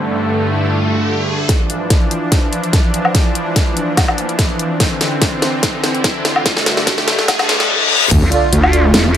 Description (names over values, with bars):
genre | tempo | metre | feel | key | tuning
heavy wobble dubstep | 145 BPM | 4/4 | half-time | D minor | A4 = 440 Hz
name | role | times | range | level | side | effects
supersaw pad | sustained chords | 0.0-9.2 s | G2 to F4 | -18 LUFS | equal | sidechain pumping
riser, reverse cymbal and sub drop | sound effects | 0.0-9.2 s | none | -19 LUFS | left 2 dB | none
dubstep drum kit | drums | 1.5-9.2 s | crash cymbal, hi-hat, snare drum, woodblock | -16 LUFS | left 1 dB | high-pass filter on snare, low-pass filter on snare, high-pass filter on hats, low-pass filter on hats, high-pass filter on perc, low-pass filter on perc, high-pass filter on cymbals, low-pass filter on cymbals, high-pass filter on room, low-pass filter on room
electronic kick drum | drums | 1.5-8.2 s | none | -15 LUFS | equal | none
wobble bass | bass | 8.1-8.2 s | D2 | -14 LUFS | equal | chorus, overdrive
vowel-sweep wobble bass | bass | 8.2-9.2 s | A1 to E2 | -12 LUFS | equal | chorus, overdrive
dark brass ensemble | stabs | 8.3-8.9 s | F4 to D5 | -18 LUFS | right 4 dB | dub echo
room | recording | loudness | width
light reverb | high-pass filter | -12 LUFS | side -10 dB against mid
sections
0.0-1.5 A section; 1.5-8.1 B section; 8.1-9.2 C section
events
riser 0.0-1.5, 1.5-7.7; build-up 1.5-8.1; drum fill 1.5-7.7; filter sweep 1.5-8.1; reverse cymbal 7.3-8.1; drop 8.1-9.2; impact 8.1-9.2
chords
0.0 Gsus2; 1.5 Dmadd9; 4.8 Cadd9; 6.5 Gsus2; 8.1 Dmadd9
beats
0.25 0.66 1.08 | 1.49 1.90 2.32 2.73 | 3.15 3.56 3.97 4.39 | 4.80 5.21 5.63 6.04 | 6.46 6.87 7.28 7.70 | 8.11 8.53 8.94